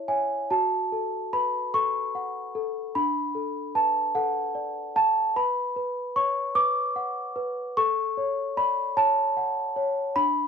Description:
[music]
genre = classical, lullaby for celesta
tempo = 50 BPM (dotted quarters)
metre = 6/8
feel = rubato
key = F# minor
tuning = A4 = 440 Hz
[part]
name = celesta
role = solo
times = 0.0-10.5 s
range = D4 to D6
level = -24 LUFS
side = equal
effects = none
[sound]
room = light reverb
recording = close, detailed microphones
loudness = -24 LUFS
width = side -6 dB against mid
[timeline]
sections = 0.5-10.5 A section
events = none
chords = 0.0 A; 0.5 F#m; 3.0 D; 5.4 Bm; 7.8 F#m/A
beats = | 0.51 1.74 | 2.95 4.16 | 5.36 6.56 | 7.76 8.96 | 10.15

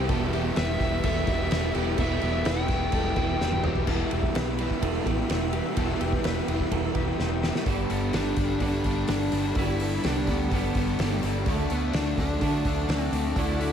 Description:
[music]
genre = rock, shoegaze and dream pop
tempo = 126 BPM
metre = 4/4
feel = straight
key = G major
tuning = A4 = 439 Hz
[part]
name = soft additive organ-like pad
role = sustained chords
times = 0.0-13.7 s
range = A4 to E6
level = -38 LUFS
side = right 1 dB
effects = ensemble chorus, built-in reverb
[part]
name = direct-recorded clean electric guitar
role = arpeggios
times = 0.0-7.7 s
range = G4 to B4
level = -37 LUFS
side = left 8 dB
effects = wide subtle chorus, digital delay
[part]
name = biting overdriven guitar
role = riff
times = 0.0-13.7 s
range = E2 to D4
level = -32 LUFS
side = right 1 dB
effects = none
[part]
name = overdriven semi-hollow guitar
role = riff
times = 0.0-13.7 s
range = G2 to E4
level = -33 LUFS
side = left 9 dB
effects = analog chorus
[part]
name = overdriven semi-hollow guitar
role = riff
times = 0.0-13.7 s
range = E2 to G4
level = -34 LUFS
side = right 10 dB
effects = reverse reverb
[part]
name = vintage muted fingered electric bass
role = bass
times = 0.0-13.7 s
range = E1 to D3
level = -30 LUFS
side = equal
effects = none
[part]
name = loose indie drum kit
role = drums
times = 0.1-13.7 s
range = crash cymbal, hi-hat, kick drum, ride cymbal, snare drum, toms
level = -30 LUFS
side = equal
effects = none
[part]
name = fuzz lead guitar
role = melody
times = 0.6-3.6, 7.9-13.7 s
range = B3 to G5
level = -32 LUFS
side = equal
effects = distortion, digital delay
[sound]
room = light reverb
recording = none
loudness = -24 LUFS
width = side -8 dB against mid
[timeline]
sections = 0.0-3.9 A section; 3.9-7.7 B section; 7.7-13.7 C section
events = drum fill 3.4-3.9, 7.2-7.7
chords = 0.1 Em; 7.7 Gadd9; 11.5 D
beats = | 0.10 0.57 1.04 1.51 | 1.99 2.46 2.93 3.40 | 3.88 4.35 4.83 5.30 | 5.77 6.25 6.72 7.20 | 7.67 8.14 8.62 9.09 | 9.57 10.04 10.52 10.99 | 11.46 11.94 12.41 12.89 | 13.36

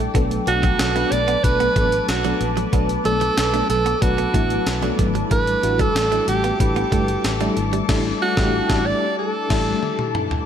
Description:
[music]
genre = 1980s-style pop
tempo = 93 BPM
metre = 4/4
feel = straight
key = unclear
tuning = A4 = 435 Hz
[part]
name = FM electric piano with tremolo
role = accompaniment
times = 0.0-10.5 s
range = F#3 to B4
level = -24 LUFS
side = left 2 dB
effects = phaser
[part]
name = glassy FM pad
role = sustained chords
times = 0.0-10.4 s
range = A4 to D6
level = -28 LUFS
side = left 2 dB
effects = ensemble chorus, built-in reverb
[part]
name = direct-recorded clean electric guitar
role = riff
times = 0.0-7.8 s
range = F#3 to B3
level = -30 LUFS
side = right 9 dB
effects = lush chorus, ping-pong delay
[part]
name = vintage muted fingered electric bass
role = bass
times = 0.0-9.7 s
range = G1 to B1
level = -26 LUFS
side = equal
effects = none
[part]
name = breakbeat sampler-style drum kit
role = drums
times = 0.1-10.5 s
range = crash cymbal, hi-hat, kick drum, snare drum, tambourine, toms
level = -23 LUFS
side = equal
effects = gated reverb
[part]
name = bright alto saxophone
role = melody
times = 0.5-10.1 s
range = F#4 to D5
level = -22 LUFS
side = right 3 dB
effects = ping-pong delay
[sound]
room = light reverb, digital ambience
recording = none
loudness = -17 LUFS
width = side -9 dB against mid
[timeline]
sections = 0.0-10.5 A section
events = band accent 7.9-10.5; drum fill 9.8-10.5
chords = 0.1 Bm7; 5.3 A7sus4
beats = | 0.15 0.79 1.44 2.08 | 2.73 3.37 4.02 4.67 | 5.31 5.96 6.60 7.25 | 7.89 8.54 9.18 9.83

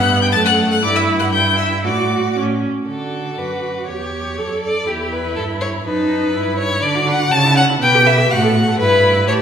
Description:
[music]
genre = quick classical-period movement for string quartet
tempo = 122 BPM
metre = 2/4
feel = straight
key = D major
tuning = A4 = 440 Hz
[part]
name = rich violin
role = melody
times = 0.0-9.4 s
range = A5 to A6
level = -23 LUFS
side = left 6 dB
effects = none
[part]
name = rich violin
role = second line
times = 0.0-9.3 s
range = G4 to A5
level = -17 LUFS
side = left 2 dB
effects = none
[part]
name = rich viola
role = accompaniment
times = 0.0-9.4 s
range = A3 to B4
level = -20 LUFS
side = right 2 dB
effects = none
[part]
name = rich cello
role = bass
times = 0.0-9.4 s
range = E2 to D3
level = -20 LUFS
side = right 2 dB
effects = none
[sound]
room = wet recital hall reverb, RT60 1.7 s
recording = recorded in a church or concert hall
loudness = -14 LUFS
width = side -8 dB against mid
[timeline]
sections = 0.0-2.9 A section; 2.9-9.4 B section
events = none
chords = 0.3 F#m; 0.8 Em/G; 1.8 D/A; 2.4 A; 2.9 D; 3.9 C#dim/E; 4.4 D/F#; 4.9 Em; 5.9 D#dim/F#; 6.4 Em/G; 6.8 Bm/D; 7.3 A/C#; 7.8 G/B; 8.3 F#m/A; 8.8 Em/G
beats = 0.34 | 0.83 1.33 | 1.85 2.37 | 2.88 3.39 | 3.89 4.39 | 4.88 5.38 | 5.87 6.36 | 6.84 7.32 | 7.81 8.30 | 8.79 9.27

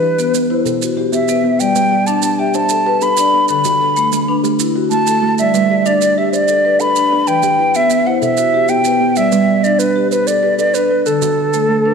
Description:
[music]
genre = southern african traditional, mbira-style interlocking cycle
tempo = 127 BPM (dotted quarters)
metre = 12/8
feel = straight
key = G major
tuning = A4 = 442 Hz
[part]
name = mellow hollow silver concert flute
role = melody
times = 0.0-11.9 s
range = A4 to B5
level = -14 LUFS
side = right 1 dB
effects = none
[part]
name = kalimba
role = arpeggios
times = 0.0-11.9 s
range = B2 to C5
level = -20 LUFS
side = right 10 dB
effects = none
[part]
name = marimba with soft mallets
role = arpeggios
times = 0.0-11.9 s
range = D3 to E5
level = -17 LUFS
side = left 8 dB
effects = none
[part]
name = maracas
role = percussion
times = 0.2-11.7 s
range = none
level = -26 LUFS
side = right 13 dB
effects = none
[sound]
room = wet echo chamber reverb, RT60 2.1 s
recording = 1960s-style stereo with parts hard left and right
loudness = -12 LUFS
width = side -6 dB against mid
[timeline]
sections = 0.0-11.9 A section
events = none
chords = 0.0 Em; 1.6 G; 3.5 D; 5.4 G; 7.3 Em; 9.2 G; 11.1 D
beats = 0.18 0.66 1.13 | 1.60 2.07 2.54 3.02 | 3.49 3.96 4.43 4.91 | 5.38 5.86 6.33 6.80 | 7.28 7.75 8.22 8.70 | 9.17 9.64 10.12 10.59 | 11.06 11.54

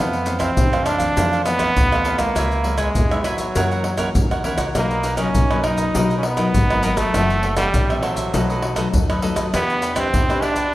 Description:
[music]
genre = samba and choro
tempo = 100 BPM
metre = 4/4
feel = straight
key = unclear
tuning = A4 = 441 Hz
[part]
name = brilliant trombone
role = melody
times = 0.0-10.7 s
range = F#3 to D#4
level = -22 LUFS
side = right 1 dB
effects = none
[part]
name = cavaquinho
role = accompaniment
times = 0.0-10.7 s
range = D#4 to F#5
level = -26 LUFS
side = right 2 dB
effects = none
[part]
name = nylon-string guitar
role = accompaniment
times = 0.0-10.7 s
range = F2 to G4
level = -26 LUFS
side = left 3 dB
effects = none
[part]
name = upright bass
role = bass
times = 0.0-10.6 s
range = F#1 to F#2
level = -25 LUFS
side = equal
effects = none
[part]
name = maracas, pandeiro, surdo and tamborim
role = percussion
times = 0.1-10.7 s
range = none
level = -22 LUFS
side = equal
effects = none
[sound]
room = moderate lush hall reverb, RT60 2.3 s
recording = rough home demo mix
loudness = -17 LUFS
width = side -16 dB against mid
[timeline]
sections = 0.0-10.7 A section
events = none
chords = 0.0 Fmaj7; 2.4 C#m7; 3.6 F#7; 4.8 Bmaj7; 7.1 F#m7b5; 8.3 B7; 9.5 Em7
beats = 0.57 1.17 1.76 | 2.36 2.96 3.56 4.16 | 4.75 5.35 5.95 6.55 | 7.15 7.75 8.35 8.94 | 9.54 10.14 10.74

